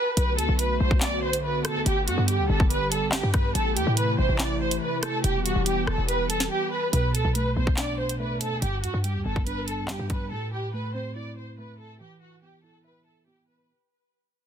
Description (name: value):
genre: hip hop, drill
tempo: 142 BPM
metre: 4/4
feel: half-time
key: B phrygian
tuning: A4 = 439 Hz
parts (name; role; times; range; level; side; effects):
- dark studio violin section; melody; 0.0-13.7 s; F#4 to D5; -28 LUFS; right 2 dB; digital delay
- hollow soft pad; sustained chords; 0.2-6.9 s; C3 to G4; -30 LUFS; equal; chorus
- short 808-style bass; bass; 0.2-10.3 s; E1 to D3; -27 LUFS; left 1 dB; none
- drill drum kit; drums; 0.2-10.2 s; handclaps, hi-hat, kick drum, rim click, snare drum; -26 LUFS; equal; none
- mellow tine electric piano; accompaniment; 6.9-13.7 s; G2 to E5; -30 LUFS; right 1 dB; phaser
room: digital ambience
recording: dense, heavily limited modern master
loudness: -23 LUFS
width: side -9 dB against mid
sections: 0.0-6.9 A section; 6.9-13.7 B section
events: break 0.0, 6.5-6.9; fade-out 6.9-13.7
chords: 0.2 Bm7; 1.9 G; 3.5 Am; 5.2 Em; 6.9 Bm7; 8.6 G; 10.3 Am; 12.0 E5